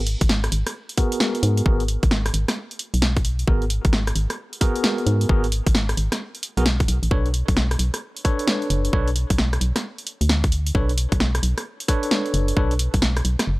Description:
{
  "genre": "UK garage, two-step garage",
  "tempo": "132 BPM",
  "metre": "4/4",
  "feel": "swing 64% on 16ths",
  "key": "G# minor",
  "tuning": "A4 = 440 Hz",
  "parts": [
    { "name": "organ-like FM bass", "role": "bass", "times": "0.0-13.6 s", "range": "F#1 to G#2", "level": "-21 LUFS", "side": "equal", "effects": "none" },
    { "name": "punchy analog drum machine", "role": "drums", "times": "0.1-13.5 s", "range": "hi-hat, rim click, snare drum", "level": "-24 LUFS", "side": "equal", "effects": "none" },
    { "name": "electronic kick drum", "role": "drums", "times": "0.2-13.0 s", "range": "none", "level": "-20 LUFS", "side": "equal", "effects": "none" },
    { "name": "bell-like tine electric piano", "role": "stabs", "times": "1.0-12.7 s", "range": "B3 to C#5", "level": "-27 LUFS", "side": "equal", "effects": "medium stereo tremolo, low-pass filter, tape echo" }
  ],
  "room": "little or no reverb",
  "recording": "dry, gritty hardware recording",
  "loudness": "-19 LUFS",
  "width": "side -20 dB against mid",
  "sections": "0.0-13.6 A section",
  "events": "filter sweep on tine electric piano 0.0-13.6",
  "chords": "0.0 G#m9; 6.9 Bm9"
}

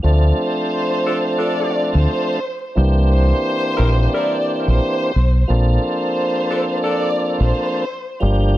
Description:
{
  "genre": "hip hop",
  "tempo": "88 BPM",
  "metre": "4/4",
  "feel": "swing 59% on 16ths",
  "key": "unclear",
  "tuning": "A4 = 440 Hz",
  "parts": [
    { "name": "tonewheel organ", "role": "accompaniment", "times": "0.0-8.6 s", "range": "E3 to A4", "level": "-20 LUFS", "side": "right 1 dB", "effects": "chorus vibrato, stopped rotary speaker, cassette tape, high-pass filter, low-pass filter" },
    { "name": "deep dub fingered electric bass", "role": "bass", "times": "0.0-8.6 s", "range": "G1 to D2", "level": "-14 LUFS", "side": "equal", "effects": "none" },
    { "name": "warm chamber violin section", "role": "melody", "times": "0.4-8.2 s", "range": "C5 to D5", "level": "-24 LUFS", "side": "left 1 dB", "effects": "high-pass filter, low-pass filter" },
    { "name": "warm saxophone section", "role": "stabs", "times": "1.1-7.1 s", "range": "F3 to Bb4", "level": "-27 LUFS", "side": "left 1 dB", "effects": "high-pass filter, low-pass filter, analog delay" }
  ],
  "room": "small room ambience",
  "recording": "dry, gritty hardware recording, vinyl crackle",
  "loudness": "-16 LUFS",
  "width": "side -15 dB against mid",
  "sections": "0.0-8.6 A section",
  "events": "none",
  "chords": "0.0 Dm7; 2.8 C9; 5.5 Bbmaj9"
}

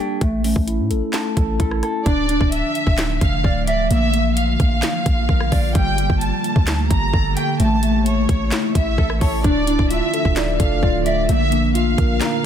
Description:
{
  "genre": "hip hop, trap",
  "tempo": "130 BPM",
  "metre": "4/4",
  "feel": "half-time",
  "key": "D harmonic minor",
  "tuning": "A4 = 440 Hz",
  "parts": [
    { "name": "mellow tine electric piano", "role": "accompaniment", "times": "0.0-2.1, 9.4-12.5 s", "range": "G3 to Bb5", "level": "-23 LUFS", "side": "equal", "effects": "medium stereo tremolo" },
    { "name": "mellow electric guitar", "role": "arpeggios", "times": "0.0-12.5 s", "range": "G3 to A5", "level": "-23 LUFS", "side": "left 1 dB", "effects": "tape echo" },
    { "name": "warm 808-style bass", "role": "bass", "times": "0.2-12.2 s", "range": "D1 to A2", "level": "-21 LUFS", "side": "equal", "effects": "none" },
    { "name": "trap drum kit", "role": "drums", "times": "0.2-12.3 s", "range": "handclaps, hi-hat, kick drum, rim click, snare drum", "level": "-20 LUFS", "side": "equal", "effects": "none" },
    { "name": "warm studio violin section", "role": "second line", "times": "2.1-12.5 s", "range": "C#5 to Bb5", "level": "-24 LUFS", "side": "right 1 dB", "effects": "tape echo" },
    { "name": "ethereal airy pad", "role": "sustained chords", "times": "2.6-12.5 s", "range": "Bb2 to G4", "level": "-26 LUFS", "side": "equal", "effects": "ensemble chorus, built-in reverb" }
  ],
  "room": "digital ambience",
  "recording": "dense, heavily limited modern master",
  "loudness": "-16 LUFS",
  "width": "side -9 dB against mid",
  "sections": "0.0-2.1 A section; 2.1-12.5 B section",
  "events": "none",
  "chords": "0.2 A; 2.1 Dmadd9; 3.9 Bb; 5.8 Gmadd9; 7.6 A; 9.4 Dmadd9; 11.3 Bb"
}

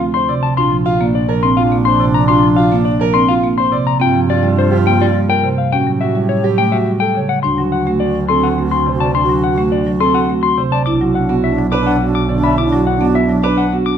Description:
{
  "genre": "classical, minimalist pattern music",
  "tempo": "105 BPM",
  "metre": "3/4",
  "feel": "straight",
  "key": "D mixolydian from 7.4 s",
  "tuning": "A4 = 440 Hz",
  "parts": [
    { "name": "mellow electric guitar", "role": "melody", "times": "0.0-14.0 s", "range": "C5 to D6", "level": "-18 LUFS", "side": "left 8 dB", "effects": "none" },
    { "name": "wooden-headed alto flute", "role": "second line", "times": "0.0-14.0 s", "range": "D4 to G4", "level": "-22 LUFS", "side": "right 1 dB", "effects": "none" },
    { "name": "marimba with soft mallets", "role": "accompaniment", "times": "0.0-13.9 s", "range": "C3 to E4", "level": "-17 LUFS", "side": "right 1 dB", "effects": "none" },
    { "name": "dark concert grand piano", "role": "arpeggios", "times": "0.0-13.9 s", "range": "D4 to E5", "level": "-20 LUFS", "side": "right 6 dB", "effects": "none" },
    { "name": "rich double bass", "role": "bass", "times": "0.0-14.0 s", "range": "Bb1 to A2", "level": "-20 LUFS", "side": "right 3 dB", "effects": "none" }
  ],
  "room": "moderate large studio reverb, RT60 1.2 s",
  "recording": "none",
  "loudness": "-12 LUFS",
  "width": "side -8 dB against mid",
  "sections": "0.0-7.4 A section; 7.4-14.0 B section",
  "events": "none",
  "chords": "0.0 Dm; 0.6 Bb; 4.0 Gm7; 5.7 A7; 7.4 D; 10.9 Bm"
}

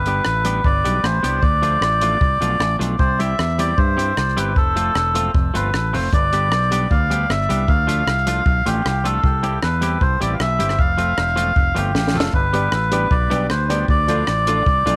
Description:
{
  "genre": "ska",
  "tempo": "154 BPM",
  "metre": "4/4",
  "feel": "straight",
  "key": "G mixolydian",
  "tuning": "A4 = 443 Hz",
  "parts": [
    { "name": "melodica", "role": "melody", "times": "0.0-15.0 s", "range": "G4 to F5", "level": "-22 LUFS", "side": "equal", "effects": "tape echo" },
    { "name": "fingered electric bass", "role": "bass", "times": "0.0-15.0 s", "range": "E1 to G2", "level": "-24 LUFS", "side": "equal", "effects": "none" },
    { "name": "semi-hollow electric guitar", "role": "accompaniment", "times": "0.1-15.0 s", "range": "F3 to G4", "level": "-29 LUFS", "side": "equal", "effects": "none" },
    { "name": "compact cocktail drum kit", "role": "drums", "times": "0.1-15.0 s", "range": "hi-hat, kick drum, rim click, snare drum", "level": "-23 LUFS", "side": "equal", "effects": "none" },
    { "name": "dark upright piano", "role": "stabs", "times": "12.5-15.0 s", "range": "D4 to D5", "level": "-28 LUFS", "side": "equal", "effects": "none" }
  ],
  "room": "moderate spring reverb, RT60 1.2 s, small room ambience",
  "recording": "none",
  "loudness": "-18 LUFS",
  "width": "mono",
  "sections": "0.0-15.0 A section",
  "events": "drum fill 11.9-12.3",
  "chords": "0.0 G; 1.4 Dm; 3.0 C; 4.6 F; 6.1 G; 7.7 Dm; 9.2 C; 10.8 F; 12.3 G; 13.9 Dm"
}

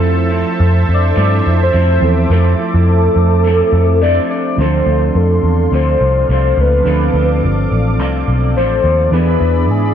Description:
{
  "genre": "indie pop, bedroom pop",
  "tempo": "105 BPM",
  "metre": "4/4",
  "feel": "swing 55% on 16ths",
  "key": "D dorian",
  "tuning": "A4 = 444 Hz",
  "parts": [
    { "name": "electric guitar through a small old amp", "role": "accompaniment", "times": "0.0-9.9 s", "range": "D3 to A4", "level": "-21 LUFS", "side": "left 4 dB", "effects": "lush chorus, vibrato effect" },
    { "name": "soft electric-piano-like synth keys", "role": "accompaniment", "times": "0.0-9.9 s", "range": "E3 to A4", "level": "-22 LUFS", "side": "right 6 dB", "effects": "chorus" },
    { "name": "warm analog pad", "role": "sustained chords", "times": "0.0-9.9 s", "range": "G#4 to D6", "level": "-23 LUFS", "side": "right 1 dB", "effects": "chorus" },
    { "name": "vintage muted picked electric bass", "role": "bass", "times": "0.0-9.9 s", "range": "G1 to G#2", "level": "-13 LUFS", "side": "equal", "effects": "none" },
    { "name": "soft octave-layered synth lead", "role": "melody", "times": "0.9-9.9 s", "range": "G#4 to D5", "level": "-16 LUFS", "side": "left 1 dB", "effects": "wide subtle chorus" }
  ],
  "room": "moderate studio reverb, RT60 0.6 s",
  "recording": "dark, warm production",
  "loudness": "-11 LUFS",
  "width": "side -9 dB against mid",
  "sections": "0.0-4.6 A section; 4.6-9.9 B section",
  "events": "none",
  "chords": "0.0 Fmaj7; 4.6 Dm7; 9.1 E7"
}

